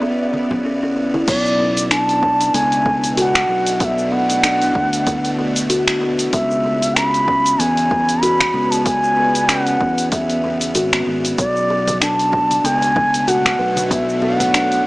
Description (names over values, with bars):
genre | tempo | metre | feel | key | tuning
organic downtempo | 95 BPM | 4/4 | swing 56% on 16ths | B dorian | A4 = 440 Hz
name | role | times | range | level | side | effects
mellow bansuri | melody | 0.0-14.9 s | D5 to B5 | -18 LUFS | equal | digital delay
bowed-like drone | sustained chords | 0.0-14.9 s | B2 to D5 | -27 LUFS | equal | built-in reverb, sidechain pumping
buzzing kalimba | arpeggios | 0.0-14.7 s | B3 to B4 | -20 LUFS | equal | tape echo
congas and bongos | percussion | 0.3-1.3, 11.7-14.5 s | none | -28 LUFS | equal | none
sustaining fretless electric bass | bass | 1.3-14.8 s | G#1 to E2 | -26 LUFS | equal | tube saturation
deep house drum kit | drums | 1.3-14.8 s | crash cymbal, finger snaps, hi-hat, shaker | -20 LUFS | equal | none
electronic kick drum | drums | 1.3-14.1 s | none | -24 LUFS | equal | none
room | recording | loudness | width
moderate lush hall reverb, RT60 2.2 s | small speaker sound | -14 LUFS | side -21 dB against mid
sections
0.0-1.3 A section; 1.3-14.9 B section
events
none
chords
0.0 C#m7; 1.3 Bm11; 6.3 C#m7; 11.4 Bm11